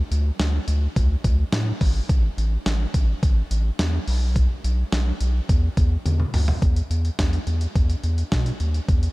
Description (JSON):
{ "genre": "synth-pop", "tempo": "106 BPM", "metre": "4/4", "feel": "straight", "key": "unclear", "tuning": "A4 = 438 Hz", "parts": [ { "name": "round analog bass", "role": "bass", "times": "0.0-9.1 s", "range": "G#1 to B2", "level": "-21 LUFS", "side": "equal", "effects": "none" }, { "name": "dusty soul sampler-style drum kit", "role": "drums", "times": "0.1-9.1 s", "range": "hi-hat, kick drum, snare drum, toms", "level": "-23 LUFS", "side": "equal", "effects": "none" } ], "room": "little or no reverb", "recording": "none", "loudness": "-19 LUFS", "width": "side -21 dB against mid", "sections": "0.0-6.6 A section; 6.6-9.1 B section", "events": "drum fill 6.1-6.6", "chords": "none" }